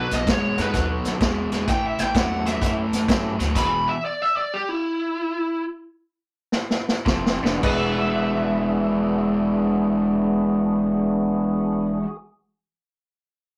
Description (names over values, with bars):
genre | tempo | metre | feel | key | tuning
electric blues shuffle | 102-128 BPM | 4/4 | swing 66% on 8ths | E mixolydian | A4 = 439 Hz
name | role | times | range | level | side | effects
lead guitar through a small cranked amp | melody | 0.0-12.0 s | E4 to B5 | -28 LUFS | equal | overdrive
percussive tonewheel organ | accompaniment | 0.0-3.4, 7.4-12.2 s | B3 to A4 | -30 LUFS | equal | slow rotary speaker, overdrive
overdriven electric guitar | riff | 0.0-4.0, 7.1-12.1 s | E2 to F#4 | -25 LUFS | equal | none
upright bass | bass | 0.0-3.8, 7.1-12.0 s | E1 to G2 | -35 LUFS | equal | none
vintage drum kit | drums | 0.1-3.7, 6.5-7.8 s | crash cymbal, hi-hat, kick drum, snare drum | -26 LUFS | equal | none
warm upright piano | second line | 7.1-12.0 s | F4 to B4 | -36 LUFS | equal | none
room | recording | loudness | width
wet small room ambience, RT60 0.5 s | rough rehearsal-room recording, tube saturation | -22 LUFS | mono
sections
0.0-7.6 A section; 7.6-12.3 B section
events
slowing down 3.6-7.6; drum fill 6.5-7.6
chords
0.0 B7; 1.7 A7; 3.6 E5; 7.1 F; 7.6 E9